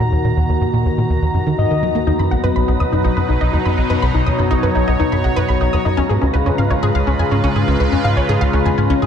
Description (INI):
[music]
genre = ambient, sequencer-driven space music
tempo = 123 BPM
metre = 4/4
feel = straight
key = unclear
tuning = A4 = 440 Hz
[part]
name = sweeping resonant pad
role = sustained chords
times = 0.0-9.1 s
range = Eb2 to Bb5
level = -18 LUFS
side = left 1 dB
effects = chorus
[part]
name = tight sequencer bass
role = riff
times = 0.0-9.1 s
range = B1 to Bb3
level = -17 LUFS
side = equal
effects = ensemble chorus, ping-pong delay
[part]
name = wind-like tuned noise texture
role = texture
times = 0.0-9.1 s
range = Bb5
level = -30 LUFS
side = right 1 dB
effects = built-in reverb
[part]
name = soft octave-layered synth lead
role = melody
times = 1.6-2.0 s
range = Eb5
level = -24 LUFS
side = left 7 dB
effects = chorus, ping-pong delay
[part]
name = wide unison pluck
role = arpeggios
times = 2.1-9.1 s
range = Db4 to D#6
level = -21 LUFS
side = left 2 dB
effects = auto-pan, ping-pong delay
[sound]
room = wet concert hall reverb, RT60 2.4 s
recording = dark, warm production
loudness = -14 LUFS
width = side -8 dB against mid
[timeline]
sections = 0.0-9.1 A section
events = fade-in on synth texture 0.0-9.1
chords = 0.0 Ebm; 2.1 B; 6.0 Db7